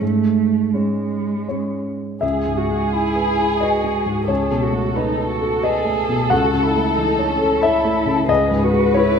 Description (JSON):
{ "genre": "neoclassical piano and strings", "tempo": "78-92 BPM", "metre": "3/4", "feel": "rubato", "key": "unclear", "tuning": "A4 = 439 Hz", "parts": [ { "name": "muted cello", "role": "second line", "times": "0.0-9.2 s", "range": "G#3 to G#4", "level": "-23 LUFS", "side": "right 6 dB", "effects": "none" }, { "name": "warm grand piano", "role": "accompaniment", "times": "0.0-9.2 s", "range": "C#2 to F#5", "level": "-19 LUFS", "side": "left 1 dB", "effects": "none" }, { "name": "muted studio violin section", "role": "melody", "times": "2.2-9.2 s", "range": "G#4 to B4", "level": "-21 LUFS", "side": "left 2 dB", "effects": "none" } ], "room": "moderate scoring stage reverb, RT60 1.4 s", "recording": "minimal, uncompressed stereo recording", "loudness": "-16 LUFS", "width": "side -6 dB against mid", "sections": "0.0-2.2 A section; 2.2-9.2 B section", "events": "none", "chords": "0.0 G#sus4; 2.2 Emaj7/C#; 4.3 B7/C#; 6.3 F#m7/C#; 8.3 C#m7", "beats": "| 0.01 0.74 1.50 | 2.22 2.92 3.62 | 4.29 4.96 5.63 | 6.31 6.97 7.63 | 8.29 8.96" }